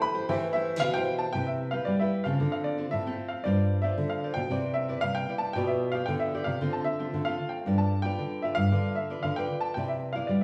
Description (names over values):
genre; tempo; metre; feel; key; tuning
samba and choro; 114 BPM; 4/4; straight; C major; A4 = 440 Hz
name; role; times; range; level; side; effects
warm baby grand piano; melody; 0.0-10.4 s; G4 to B5; -34 LUFS; equal; none
nylon-string guitar; accompaniment; 0.0-10.4 s; D3 to D5; -36 LUFS; equal; none
nylon-string guitar; bass; 0.0-10.4 s; G2 to A3; -32 LUFS; equal; none
room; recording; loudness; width
wet stone room reverb, RT60 1.2 s; band playing live in one room, studio reverb; -29 LUFS; mono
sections
0.0-1.3 A section; 1.3-10.4 B section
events
grand piano solo 0.0-1.3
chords
0.0 Am7; 1.3 Cmaj7; 2.4 Dm7; 3.4 G7sus4; 4.5 Cmaj9; 5.6 G7/B; 6.6 Dm7; 7.7 G7; 9.8 Cmaj9